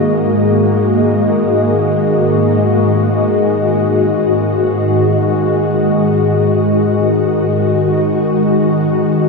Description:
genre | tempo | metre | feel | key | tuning
ambient | free time | none | none | unclear | A4 = 439 Hz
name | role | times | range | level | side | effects
ethereal airy pad | sustained chords | 0.0-9.3 s | Ab2 to Eb5 | -12 LUFS | left 1 dB | ensemble chorus, built-in reverb
bowed-like drone | drone | 0.0-9.3 s | Ab3 | -18 LUFS | equal | built-in reverb
room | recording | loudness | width
wet huge ambient reverb, RT60 8.9 s | small room ambience | -11 LUFS | side -3 dB against mid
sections
0.0-9.3 A section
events
none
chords
0.0 Ebm/Ab

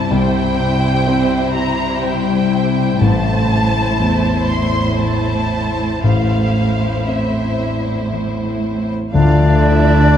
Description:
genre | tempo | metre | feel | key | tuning
cinematic | 57-63 BPM | 3/4 | rubato | unclear | A4 = 439 Hz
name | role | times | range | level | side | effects
rich studio violin section | melody | 0.0-10.2 s | E5 to C6 | -23 LUFS | left 1 dB | none
rich studio violin section | second line | 0.0-10.2 s | E4 to D5 | -23 LUFS | left 2 dB | none
dark concert grand piano | accompaniment | 0.0-10.2 s | A1 to C4 | -18 LUFS | equal | none
concert harp | arpeggios | 0.0-10.2 s | A2 to D5 | -23 LUFS | left 8 dB | none
warm studio cello section | bass | 0.0-10.2 s | A2 to D3 | -20 LUFS | right 3 dB | none
bright clarinet | second line | 9.1-10.2 s | D4 | -17 LUFS | right 1 dB | none
bright silver concert flute | second line | 9.1-10.2 s | D5 | -22 LUFS | left 1 dB | none
rich studio viola section | accompaniment | 9.1-10.2 s | F3 to F4 | -22 LUFS | right 2 dB | none
mellow French horn section | sustained chords | 9.1-10.2 s | A3 | -19 LUFS | left 4 dB | none
rich studio double bass section | bass | 9.1-10.2 s | D2 | -19 LUFS | right 3 dB | none
timpani | percussion | 9.1-10.2 s | D3 | -22 LUFS | equal | none
room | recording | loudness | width
wet concert hall reverb, RT60 2.0 s | dark, warm production | -14 LUFS | side -9 dB against mid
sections
0.0-9.1 A section; 9.1-10.2 B section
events
none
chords
0.0 C; 3.0 Am; 9.1 Dmadd9

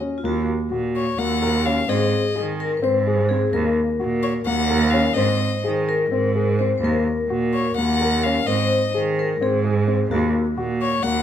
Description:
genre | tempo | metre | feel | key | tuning
contemporary instrumental, chamber music in an uneven meter | 256 BPM (eighths) | 7/8 | straight | Eb dorian | A4 = 440 Hz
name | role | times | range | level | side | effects
dark concert grand piano | arpeggios | 0.0-11.2 s | Bb3 to Bb4 | -24 LUFS | left 3 dB | none
vibraphone with medium hard mallets | second line | 0.2-11.2 s | F4 to C5 | -25 LUFS | left 4 dB | none
clear cello | bass | 0.2-11.2 s | Eb2 to Eb3 | -22 LUFS | right 4 dB | none
rich violin | melody | 1.0-11.2 s | Db5 to Gb5 | -24 LUFS | left 6 dB | none
room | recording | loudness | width
moderate recital hall reverb, RT60 1.4 s | minimal, uncompressed stereo recording | -18 LUFS | side -10 dB against mid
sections
0.2-11.2 A section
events
none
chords
0.2 Ebm; 1.9 Ab; 3.5 Ebm; 5.2 Ab; 6.8 Ebm; 8.5 Ab; 10.1 Ebm7

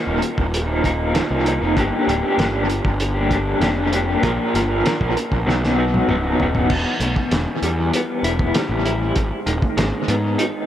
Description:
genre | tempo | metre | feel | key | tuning
psychedelic rock | 97 BPM | 4/4 | straight | unclear | A4 = 440 Hz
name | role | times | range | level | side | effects
electric guitar through a small old amp | riff | 0.0-10.7 s | Eb2 to Bb4 | -20 LUFS | left 1 dB | tremolo, tape echo
fuzz picked electric bass | bass | 0.1-10.4 s | Db1 to Ab2 | -23 LUFS | equal | overdrive
cloth-damped thuddy drum kit | drums | 0.2-10.5 s | crash cymbal, hi-hat, kick drum, snare drum, toms | -23 LUFS | equal | tape echo
congas | percussion | 6.7-10.2 s | none | -34 LUFS | right 2 dB | none
room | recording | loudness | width
light reverb, small room ambience | echo-heavy mix | -17 LUFS | side -11 dB against mid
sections
0.0-6.7 A section; 6.7-10.7 B section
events
drum fill 5.5-6.7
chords
0.0 Ebsus2; 1.8 Gm; 4.2 Bb5; 5.5 B; 6.7 Em; 9.2 Abm

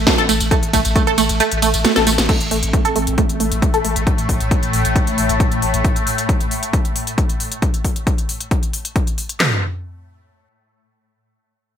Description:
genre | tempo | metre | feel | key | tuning
driving peak-time techno | 135 BPM | 4/4 | straight | A minor | A4 = 442 Hz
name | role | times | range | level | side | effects
saturated sub bass | bass | 0.0-5.8 s | A1 | -23 LUFS | left 1 dB | overdrive, sidechain pumping, low-pass filter
tight sequenced synth | riff | 0.1-3.9 s | A3 to A4 | -18 LUFS | right 3 dB | chorus, sidechain pumping, digital delay
techno drum kit | drums | 0.1-9.5 s | handclaps, kick drum, snare drum, toms | -18 LUFS | left 1 dB | gated reverb
techno drum kit | drums | 0.1-9.4 s | crash cymbal, hi-hat, ride cymbal, snare drum, tambourine | -21 LUFS | left 1 dB | gated reverb
swarming drone | drone | 3.4-5.9 s | A2 to A3 | -22 LUFS | left 2 dB | built-in reverb, lush chorus, sidechain pumping
warbly tape-like pad | texture | 2.6-4.1 s | C4 to E5 | -29 LUFS | right 3 dB | chorus, built-in reverb, sidechain pumping
room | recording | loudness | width
light reverb, digital ambience | bright 1980s-style digital production | -15 LUFS | side -9 dB against mid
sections
0.0-2.3 A section; 2.3-9.4 B section; 9.4-11.8 C section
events
drop 0.0-2.3; kick drops out 1.4-2.3; drum fill 1.8-2.3; fade-out on ambient pad 2.3-4.1; filter sweep on synth arpeggio sound 2.3-4.1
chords
0.0 N.C.; 2.3 Am; 9.4 N.C.

